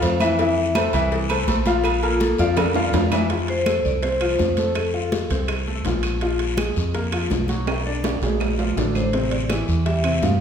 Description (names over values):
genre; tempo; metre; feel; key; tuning
Afro-Cuban jazz; 165 BPM; 4/4; straight; F major; A4 = 440 Hz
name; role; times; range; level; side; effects
vibraphone with medium hard mallets; melody; 0.0-5.4, 9.0-10.4 s; F4 to F5; -24 LUFS; equal; none
clear upright piano; accompaniment; 0.0-10.3 s; C3 to F5; -24 LUFS; left 3 dB; none
deep dub fingered electric bass; bass; 0.0-10.4 s; A1 to G2; -24 LUFS; equal; none
congas; percussion; 0.0-10.4 s; none; -30 LUFS; equal; none
cowbell and bongos; percussion; 0.0-10.4 s; none; -31 LUFS; left 4 dB; none
guiro; percussion; 0.0-10.4 s; none; -35 LUFS; left 4 dB; none
timbales and agogo bells; percussion; 0.0-10.4 s; none; -28 LUFS; right 4 dB; none
claves; percussion; 0.2-10.2 s; none; -35 LUFS; right 4 dB; none
room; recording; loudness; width
wet recital hall reverb, RT60 1.3 s; recorded in a church or concert hall; -19 LUFS; side -8 dB against mid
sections
0.0-3.3 A section; 3.3-10.4 B section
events
vibraphone solo 0.0-3.3; drum fill 2.4-3.3, 7.7-9.1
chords
0.4 Fmaj7; 1.8 Bbmaj7; 3.3 F; 6.2 Bb5; 7.7 Bm; 8.4 Bb7; 9.1 Am7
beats
0.02 | 0.39 0.75 1.11 1.48 | 1.84 2.21 2.57 2.94 | 3.30 3.66 4.03 4.39 | 4.76 5.12 5.49 5.85 | 6.22 6.58 6.95 7.31 | 7.67 8.04 8.40 8.77 | 9.13 9.50 9.86 10.23